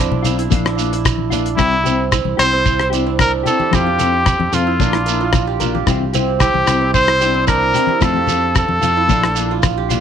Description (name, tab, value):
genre	highlife guitar band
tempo	112 BPM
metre	4/4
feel	straight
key	C mixolydian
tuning	A4 = 439 Hz
part	qanun	arpeggios	0.0-10.0 s	C4 to A4	-21 LUFS	right 11 dB	tape echo
part	fingered electric bass	bass	0.0-10.0 s	Bb1 to F2	-21 LUFS	left 1 dB	none
part	congas	percussion	0.1-10.0 s	none	-25 LUFS	left 9 dB	none
part	mellow electric guitar	accompaniment	0.2-10.0 s	E3 to Bb4	-22 LUFS	left 12 dB	harmonic tremolo
part	damped 70s drum kit	drums	0.2-10.0 s	hi-hat, kick drum, rim click	-19 LUFS	left 3 dB	none
part	shekere	percussion	0.2-10.0 s	none	-23 LUFS	right 7 dB	none
part	bright trumpet	melody	1.6-9.6 s	E4 to C5	-16 LUFS	left 1 dB	none
room	light reverb, small room reverb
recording	1960s-style stereo with parts hard left and right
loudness	-13 LUFS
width	side -8 dB against mid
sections	0.0-1.6 A section; 1.6-10.0 B section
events	none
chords	0.0 F5; 0.5 Bb; 1.6 C; 3.7 F; 4.8 Bb; 5.9 C; 8.0 F; 9.1 Bb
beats	0.51 1.05 | 1.58 2.12 2.65 3.19 | 3.72 4.26 4.80 5.33 | 5.87 6.41 6.94 7.48 | 8.02 8.55 9.09 9.63